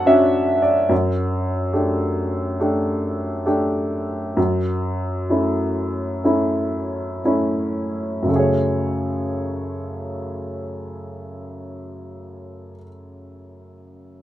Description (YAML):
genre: folk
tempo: 56-72 BPM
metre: 4/4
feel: straight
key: F# minor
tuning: A4 = 439 Hz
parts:
  - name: clear upright piano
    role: accompaniment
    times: 0.0-14.2 s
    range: F#2 to A5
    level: -19 LUFS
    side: equal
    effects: none
room: moderate small room reverb, RT60 0.5 s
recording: minimal, uncompressed stereo recording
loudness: -19 LUFS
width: side -13 dB against mid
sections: 0.0-8.3 A section; 8.3-12.5 B section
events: slowing down 0.9-8.3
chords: 0.0 Dmaj7/F#; 0.9 Gsus2/F#; 4.4 A/F#; 8.3 F#madd9